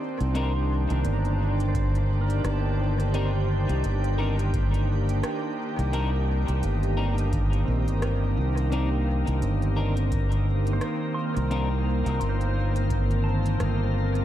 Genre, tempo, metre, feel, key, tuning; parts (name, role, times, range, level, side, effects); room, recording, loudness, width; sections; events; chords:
ambient dub; 86 BPM; 4/4; swing 58% on 16ths; C dorian; A4 = 440 Hz
soft additive organ-like pad; sustained chords; 0.0-14.2 s; Eb3 to C5; -29 LUFS; equal; ensemble chorus, built-in reverb
pedal steel guitar; arpeggios; 0.0-14.2 s; C4 to C6; -36 LUFS; right 1 dB; ping-pong delay
modern bright fingered electric bass; bass; 0.2-14.2 s; G1 to C2; -24 LUFS; equal; tube saturation
organic electronic drum kit; drums; 0.2-14.2 s; hi-hat, rim click; -40 LUFS; equal; studio reverb, dub echo
electric guitar at the edge of break-up; stabs; 0.3-11.7 s; C4 to Bb4; -36 LUFS; left 3 dB; analog chorus, dub echo
electronic kick drum; drums; 1.7-13.1 s; -29 LUFS; equal; studio reverb
light reverb; vinyl crackle; -23 LUFS; side -12 dB against mid
0.0-14.2 A section
0.0 Cm9